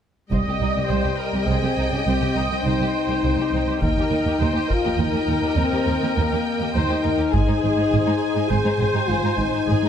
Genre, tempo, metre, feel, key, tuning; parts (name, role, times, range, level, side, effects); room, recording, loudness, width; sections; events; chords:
cinematic, epic orchestral film score; 103 BPM; 3/4; straight; C minor; A4 = 440 Hz
clear symphonic violin section; melody; 0.3-9.9 s; G5 to Ab5; -31 LUFS; left 2 dB
warm symphonic violin section; second line; 0.3-9.9 s; C4 to Eb5; -30 LUFS; left 3 dB
rich symphonic viola section; accompaniment; 0.3-9.9 s; G4 to Eb5; -28 LUFS; right 2 dB
dark French horn section; sustained chords; 0.3-9.9 s; G3 to Ab4; -23 LUFS; left 4 dB
dark symphonic cello section; bass; 0.3-9.9 s; C2 to Ab2; -26 LUFS; right 3 dB
dark symphonic double bass section; bass; 0.3-9.7 s; Ab1 to Eb2; -26 LUFS; right 3 dB
taiko ensemble; drums; 0.3-8.5 s; -26 LUFS; equal
light reverb; -19 LUFS; side -8 dB against mid
0.3-9.9 A section
0.3 Cm; 3.8 Eb; 7.3 Ab